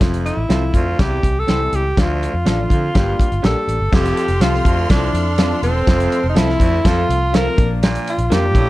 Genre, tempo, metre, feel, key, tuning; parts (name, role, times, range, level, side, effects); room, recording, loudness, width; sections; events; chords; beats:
uptempo 1960s-style soul; 123 BPM; 4/4; straight; F major; A4 = 438 Hz
clear grand piano; accompaniment; 0.0-8.6 s; E3 to A4; -25 LUFS; left 5 dB; plate reverb
raspy baritone saxophone; riff; 0.0-8.7 s; D2 to Bb2; -26 LUFS; right 2 dB
vintage muted fingered electric bass; bass; 0.0-8.7 s; E1 to D3; -20 LUFS; equal
warm soul drum kit; drums; 0.0-8.7 s; crash cymbal, hi-hat, kick drum, snare drum; -16 LUFS; equal
breathy tenor saxophone; melody; 0.3-8.7 s; C4 to Bb4; -20 LUFS; equal; slapback echo, plate reverb
electric guitar through a small old amp; stabs; 0.5-8.4 s; Bb3 to D5; -27 LUFS; right 6 dB; plate reverb
warm studio violin section; second line; 3.9-8.7 s; F4 to F6; -28 LUFS; equal; slapback echo, plate reverb
warm horn section; second line; 4.9-7.2 s; F3 to A4; -31 LUFS; right 1 dB; plate reverb
light reverb; dark, warm production; -14 LUFS; side -17 dB against mid
0.0-3.9 A section; 3.9-8.7 B section
0.0 F; 1.0 C; 2.0 Dm; 2.9 Gm; 3.9 F; 7.6 Bb
| 0.01 0.50 0.99 1.48 | 1.97 2.46 2.95 3.43 | 3.92 4.41 4.90 5.38 | 5.87 6.36 6.84 7.33 | 7.82 8.30